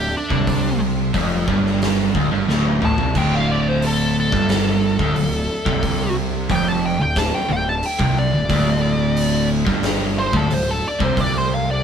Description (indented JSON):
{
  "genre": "stoner and doom metal",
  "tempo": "90 BPM",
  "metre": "4/4",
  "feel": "straight",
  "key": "D minor",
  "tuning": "A4 = 439 Hz",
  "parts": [
    { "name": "fuzz lead guitar", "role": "melody", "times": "0.0-11.8 s", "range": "D4 to A5", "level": "-23 LUFS", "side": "equal", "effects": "wah, distortion" },
    { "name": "overdriven tonewheel organ", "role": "sustained chords", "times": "0.0-11.8 s", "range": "D3 to E5", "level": "-35 LUFS", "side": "right 1 dB", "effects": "none" },
    { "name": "overdriven electric guitar", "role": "riff", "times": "0.0-11.8 s", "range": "D2 to C3", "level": "-24 LUFS", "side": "left 1 dB", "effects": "none" },
    { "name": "thick fuzz guitar", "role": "riff", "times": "0.0-11.8 s", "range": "D2 to C3", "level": "-25 LUFS", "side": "left 7 dB", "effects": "distortion" },
    { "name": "thick fuzz guitar", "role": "riff", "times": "0.0-11.8 s", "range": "D2 to C3", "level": "-24 LUFS", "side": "right 9 dB", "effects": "distortion" },
    { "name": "fuzz picked electric bass", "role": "bass", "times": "0.0-11.8 s", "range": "D1 to C2", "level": "-26 LUFS", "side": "equal", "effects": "overdrive" },
    { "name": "oversized low-tuned drum kit", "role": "drums", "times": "0.3-11.3 s", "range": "crash cymbal, hi-hat, kick drum, snare drum, toms", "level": "-24 LUFS", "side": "equal", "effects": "none" }
  ],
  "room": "light reverb",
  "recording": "band playing live in one room",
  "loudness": "-16 LUFS",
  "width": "side -7 dB against mid",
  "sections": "0.0-11.8 A section",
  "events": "lead electric guitar solo 0.0-11.8; drum fill 2.5-3.2",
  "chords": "0.0 Dm",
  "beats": "| 0.47 1.14 1.81 2.48 | 3.15 3.82 4.49 5.16 | 5.83 6.50 7.17 7.84 | 8.50 9.17 9.84 10.51 | 11.18"
}